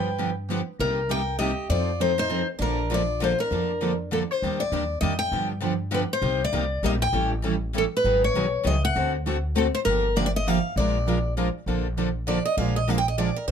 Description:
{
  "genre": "acoustic string swing (jazz manouche)",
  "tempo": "199 BPM",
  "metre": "3/4",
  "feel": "swing 59% on 8ths",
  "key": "Bb major, Eb major from 4.4 s",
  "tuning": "A4 = 442 Hz",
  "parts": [
    { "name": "picked steel-string acoustic guitar", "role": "melody", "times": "0.0-11.3 s", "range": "A4 to G5", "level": "-25 LUFS", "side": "left 2 dB", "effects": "plate reverb" },
    { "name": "picked steel-string acoustic guitar", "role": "second line", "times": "0.0-3.9, 12.3-13.5 s", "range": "D4 to G5", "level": "-30 LUFS", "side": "right 4 dB", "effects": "none" },
    { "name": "picked steel-string acoustic guitar", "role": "accompaniment", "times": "0.0-13.5 s", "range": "C3 to Bb4", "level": "-29 LUFS", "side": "left 7 dB", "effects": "none" },
    { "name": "picked steel-string acoustic guitar", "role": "accompaniment", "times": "0.0-13.5 s", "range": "C3 to Bb4", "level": "-30 LUFS", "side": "right 8 dB", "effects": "none" },
    { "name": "upright bass", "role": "bass", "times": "0.0-13.5 s", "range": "G1 to G2", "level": "-28 LUFS", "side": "equal", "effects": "none" }
  ],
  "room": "light reverb",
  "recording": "close, detailed microphones",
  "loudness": "-22 LUFS",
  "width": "side -7 dB against mid",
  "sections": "0.0-4.4 A section; 4.4-11.7 B section; 11.7-13.5 C section",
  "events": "steel-string acoustic guitar solo 11.7-13.5",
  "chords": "0.0 G7; 0.8 Cm7; 1.7 F7; 2.6 Bbmaj7; 4.4 Ebmaj7; 5.3 G7; 6.2 Cm9; 7.1 A7; 8.0 Abm7; 8.9 D7; 9.9 Gm7; 10.8 Bb7; 11.7 Bbmaj7; 12.6 Bb7"
}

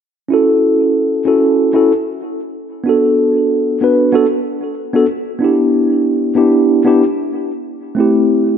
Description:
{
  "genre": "chillout",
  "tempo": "94 BPM",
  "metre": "4/4",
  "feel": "straight",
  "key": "unclear",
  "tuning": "A4 = 439 Hz",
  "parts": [
    { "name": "mellow tine electric piano", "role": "accompaniment", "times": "0.3-8.6 s", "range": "A3 to B4", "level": "-12 LUFS", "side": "moving between left 2 dB and right 4 dB", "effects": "auto-pan, digital delay" }
  ],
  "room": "wet lush hall reverb, RT60 2.3 s",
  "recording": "none",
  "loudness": "-11 LUFS",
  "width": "side -8 dB against mid",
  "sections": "0.0-8.6 A section",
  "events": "none",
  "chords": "0.0 A6/C#; 2.2 Bm7; 5.1 G6/B; 7.7 Am7"
}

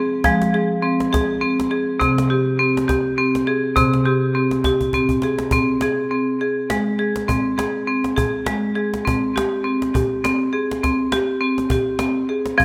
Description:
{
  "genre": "world meditative, meditative tuned percussion",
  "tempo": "102 BPM",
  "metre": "3/4",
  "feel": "swing 56% on 16ths",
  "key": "unclear",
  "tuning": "A4 = 440 Hz",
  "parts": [
    { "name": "marimba with hard mallets", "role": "arpeggios", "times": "0.0-12.6 s", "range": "C3 to Ab4", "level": "-20 LUFS", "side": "equal", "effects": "diffuse ambient delay" },
    { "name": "cajon", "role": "percussion", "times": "0.2-12.6 s", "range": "none", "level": "-28 LUFS", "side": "equal", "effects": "none" }
  ],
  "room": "moderate echo chamber reverb, RT60 2.1 s",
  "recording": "none",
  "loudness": "-20 LUFS",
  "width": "mono",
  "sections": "0.0-5.5 A section; 5.5-12.6 B section",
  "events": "drum fill 4.8-5.5",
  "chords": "0.0 Fm; 2.0 C5; 5.5 Ab; 9.1 C5"
}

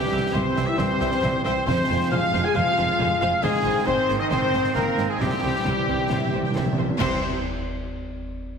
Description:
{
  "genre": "cinematic, heroic adventure film score",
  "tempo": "135 BPM",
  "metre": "4/4",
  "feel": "straight",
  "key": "C mixolydian",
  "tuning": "A4 = 439 Hz",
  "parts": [
    { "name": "rich symphonic violin section", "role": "melody", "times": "0.0-7.3 s", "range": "G4 to Ab5", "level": "-30 LUFS", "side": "left 4 dB", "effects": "none" },
    { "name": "clear oboe", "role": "second line", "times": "0.0-7.2 s", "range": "G4 to Ab5", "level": "-30 LUFS", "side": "right 1 dB", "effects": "none" },
    { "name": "flute section", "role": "second line", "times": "0.0-7.2 s", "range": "G4 to Ab5", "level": "-32 LUFS", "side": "left 1 dB", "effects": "none" },
    { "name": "bright trombone section", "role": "sustained chords", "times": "0.0-7.2 s", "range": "Eb3 to C4", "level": "-31 LUFS", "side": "right 3 dB", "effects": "none" },
    { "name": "dark French horn section", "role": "sustained chords", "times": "0.0-7.2 s", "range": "G3 to Ab4", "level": "-28 LUFS", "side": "left 3 dB", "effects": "none" },
    { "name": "dark trumpet", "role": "stabs", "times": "0.0-7.2 s", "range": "G4 to Ab5", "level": "-30 LUFS", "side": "right 1 dB", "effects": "none" },
    { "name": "dark symphonic violin section", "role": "second line", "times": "0.1-7.2 s", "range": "C5 to Ab5", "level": "-38 LUFS", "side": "left 2 dB", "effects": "none" },
    { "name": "rich studio viola section", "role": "accompaniment", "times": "0.1-7.2 s", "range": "G4 to E5", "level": "-36 LUFS", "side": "right 1 dB", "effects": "none" },
    { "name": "rich symphonic cello section", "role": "bass", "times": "0.1-7.3 s", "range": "C2 to C3", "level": "-31 LUFS", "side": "right 2 dB", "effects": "none" },
    { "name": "rich symphonic double bass section", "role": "bass", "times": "0.1-7.3 s", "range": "F1 to C2", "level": "-31 LUFS", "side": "right 3 dB", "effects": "none" },
    { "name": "concert bass drum, concert snare drum, clash cymbals and concert toms", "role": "drums", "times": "0.3-7.1 s", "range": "none", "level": "-31 LUFS", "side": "equal", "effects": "none" },
    { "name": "timpani", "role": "percussion", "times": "5.2-7.2 s", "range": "C3", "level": "-29 LUFS", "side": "right 1 dB", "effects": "none" },
    { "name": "clash cymbals and concert bass drum", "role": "percussion", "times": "7.0-7.9 s", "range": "none", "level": "-32 LUFS", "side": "equal", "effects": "none" }
  ],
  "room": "wet scoring stage reverb, RT60 1.9 s",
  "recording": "heavily compressed radio sound",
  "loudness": "-20 LUFS",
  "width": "side -6 dB against mid",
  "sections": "0.0-7.0 A section; 7.0-8.6 B section",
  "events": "timpani fill 5.2-7.0; band accent 7.0-7.4",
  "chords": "0.0 C; 1.7 Fm; 3.4 Ab; 5.2 C; 7.0 C5"
}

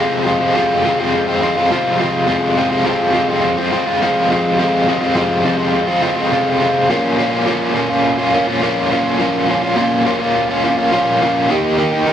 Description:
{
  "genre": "rock",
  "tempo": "104 BPM",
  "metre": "4/4",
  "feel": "straight",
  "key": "F minor",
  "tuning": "A4 = 441 Hz",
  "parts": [
    { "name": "overdriven electric guitar", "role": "solo", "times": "0.0-12.1 s", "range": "F2 to G4", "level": "-13 LUFS", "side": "equal", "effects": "tremolo" }
  ],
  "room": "moderate large studio reverb, RT60 0.9 s",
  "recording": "band playing live in one room",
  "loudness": "-13 LUFS",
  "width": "side -9 dB against mid",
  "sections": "0.0-12.1 A section",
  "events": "none",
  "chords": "0.0 Fm; 6.9 Bbm; 11.5 Eb"
}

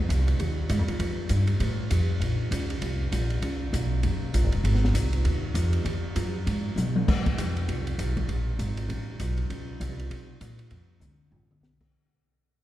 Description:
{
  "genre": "jazz piano trio",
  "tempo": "198 BPM",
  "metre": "4/4",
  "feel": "swing 60% on 8ths",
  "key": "unclear",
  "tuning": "A4 = 438 Hz",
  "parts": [
    { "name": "upright bass", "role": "bass", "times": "0.0-11.9 s", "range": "Fb1 to C3", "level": "-26 LUFS", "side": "equal", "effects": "none" },
    { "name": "open jazz drum kit", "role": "drums", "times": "0.1-11.9 s", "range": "crash cymbal, hi-hat, kick drum, ride cymbal, snare drum, toms", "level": "-31 LUFS", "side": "equal", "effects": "none" }
  ],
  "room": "wet church reverb, RT60 3.5 s",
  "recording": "recorded in a church or concert hall",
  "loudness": "-24 LUFS",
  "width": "side -14 dB against mid",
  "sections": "0.0-7.1 A section; 7.1-11.9 B section",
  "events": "drum fill 6.8-7.1, 11.0-11.6; fade-out 7.1-11.9",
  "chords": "none"
}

